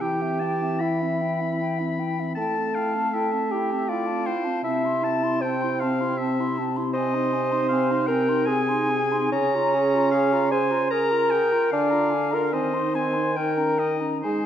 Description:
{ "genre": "classical, slow romantic movement for wind quintet", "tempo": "67-80 BPM", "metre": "3/4", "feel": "rubato", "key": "Ab major from 7.0 s", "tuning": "A4 = 439 Hz", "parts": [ { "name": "mellow silver concert flute", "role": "melody", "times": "0.0-14.5 s", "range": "E5 to C6", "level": "-30 LUFS", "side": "left 6 dB", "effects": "none" }, { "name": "bright oboe", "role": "second line", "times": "0.0-14.5 s", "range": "C5 to B5", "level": "-31 LUFS", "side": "left 4 dB", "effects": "none" }, { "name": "dark French horn", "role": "accompaniment", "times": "0.0-14.5 s", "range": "C3 to A3", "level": "-28 LUFS", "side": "equal", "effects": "none" }, { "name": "mellow clarinet", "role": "accompaniment", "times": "0.0-14.5 s", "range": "C4 to Ab4", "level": "-30 LUFS", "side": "right 3 dB", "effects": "none" }, { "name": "warm bassoon", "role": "bass", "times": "0.0-14.5 s", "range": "C4 to C5", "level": "-24 LUFS", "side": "right 2 dB", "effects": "none" } ], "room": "wet recital hall reverb, RT60 1.5 s", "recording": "none", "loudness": "-21 LUFS", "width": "side -10 dB against mid", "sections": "0.0-14.5 A section", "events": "none", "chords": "0.0 C/E; 2.4 Am7; 4.6 Am/C; 7.0 Ab/C; 9.3 Bbm7/Db; 11.7 Bb7/D; 12.5 Ab/Eb; 13.4 Eb7" }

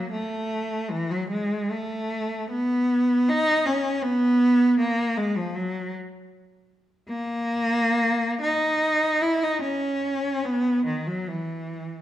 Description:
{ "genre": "classical, free, expressive piece for unaccompanied cello", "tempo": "60-82 BPM", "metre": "3/4", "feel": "rubato", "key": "unclear", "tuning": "A4 = 440 Hz", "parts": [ { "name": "rich cello", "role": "solo", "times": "0.0-12.0 s", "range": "D#3 to E4", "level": "-22 LUFS", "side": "equal", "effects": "none" } ], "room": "moderate recital hall reverb, RT60 1.4 s", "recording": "none", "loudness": "-22 LUFS", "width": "side -12 dB against mid", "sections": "0.0-12.0 A section", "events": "none", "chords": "none" }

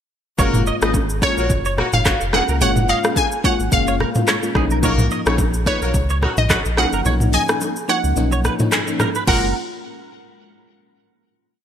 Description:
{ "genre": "afrobeats", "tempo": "108 BPM", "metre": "4/4", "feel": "swing 55% on 16ths", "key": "F# major", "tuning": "A4 = 440 Hz", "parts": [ { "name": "warm horn section", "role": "second line", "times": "0.4-9.5 s", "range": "F#3 to D#5", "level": "-27 LUFS", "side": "left 3 dB", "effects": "none" }, { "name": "FM electric piano with soft pad layer", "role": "accompaniment", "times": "0.4-9.5 s", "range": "E#3 to E#4", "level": "-24 LUFS", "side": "left 3 dB", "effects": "chorus, tremolo" }, { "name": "direct-recorded clean electric guitar", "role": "riff", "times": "0.4-9.5 s", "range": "G#4 to D#5", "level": "-27 LUFS", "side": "right 6 dB", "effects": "ensemble chorus, ping-pong delay" }, { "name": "sub bass with octave", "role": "bass", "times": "0.4-9.5 s", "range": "E#1 to C#2", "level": "-21 LUFS", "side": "equal", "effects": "none" }, { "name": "afro-pop drum kit", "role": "drums", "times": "0.4-9.4 s", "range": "crash cymbal, handclaps, hi-hat, kick drum, rim click, shaker, toms", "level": "-20 LUFS", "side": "equal", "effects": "gated reverb" }, { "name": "congas and bongos", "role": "percussion", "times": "0.4-9.5 s", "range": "none", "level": "-29 LUFS", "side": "right 1 dB", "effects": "none" }, { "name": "glassy wavetable pluck", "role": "melody", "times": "1.2-9.5 s", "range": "C#5 to G#5", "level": "-21 LUFS", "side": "right 1 dB", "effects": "chorus, ping-pong delay" } ], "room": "light reverb", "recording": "bright 1980s-style digital production, lossy compression artefacts", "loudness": "-16 LUFS", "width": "side -9 dB against mid", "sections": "0.4-9.3 chorus; 9.3-11.5 final chord", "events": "kick muted 7.1-9.3", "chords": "0.4 F#maj7; 4.6 Bmaj9#11; 9.3 F#maj7" }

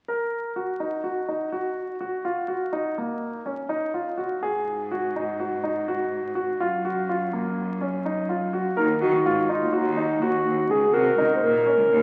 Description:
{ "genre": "contemporary instrumental, contemporary", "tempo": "248 BPM (eighths)", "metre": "9/8", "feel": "straight", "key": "unclear", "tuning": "A4 = 441 Hz", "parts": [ { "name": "warm baby grand piano", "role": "arpeggios", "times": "0.1-12.0 s", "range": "Bb3 to Bb4", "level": "-28 LUFS", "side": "equal", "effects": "none" }, { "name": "warm cello", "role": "bass", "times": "4.4-12.0 s", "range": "Db2 to Eb3", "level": "-32 LUFS", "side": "equal", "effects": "none" }, { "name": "dark clarinet", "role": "melody", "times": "8.8-12.0 s", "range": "Eb4 to C5", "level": "-24 LUFS", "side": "equal", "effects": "none" } ], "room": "wet concert hall reverb, RT60 2.1 s", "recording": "very old 78 rpm record, vinyl crackle", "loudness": "-25 LUFS", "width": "mono", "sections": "0.1-8.8 A section; 8.8-12.0 B section", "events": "none", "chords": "0.1 Ebm; 4.4 Ab5; 6.6 Gbmaj7; 8.8 Ebm7" }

